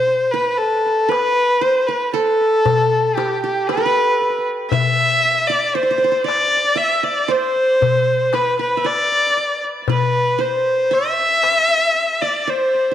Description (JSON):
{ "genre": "Turkish makam ensemble", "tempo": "116 BPM (eighths)", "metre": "10/8", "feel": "straight", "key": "unclear", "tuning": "A4 = 439 Hz", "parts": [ { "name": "warm violin", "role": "melody", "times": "0.0-12.9 s", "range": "G4 to E5", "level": "-16 LUFS", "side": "left 1 dB", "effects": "tape echo" }, { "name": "qanun", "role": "second line", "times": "0.0-12.9 s", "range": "G4 to E5", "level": "-24 LUFS", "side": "right 7 dB", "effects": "tape echo" }, { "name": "darbuka", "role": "percussion", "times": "0.6-11.7 s", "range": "none", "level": "-23 LUFS", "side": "left 6 dB", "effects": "none" } ], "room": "wet spring reverb, RT60 1.2 s, small room ambience", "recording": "1960s-style stereo with parts hard left and right", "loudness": "-15 LUFS", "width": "side -10 dB against mid", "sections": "0.0-12.9 A section", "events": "none", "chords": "none", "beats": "0.07 0.58 1.10 1.62 2.13 2.65 3.17 3.68 4.20 | 4.72 5.24 5.75 6.27 6.79 7.30 7.82 8.34 8.85 9.37 | 9.89 10.40 10.92 11.44 11.95 12.47" }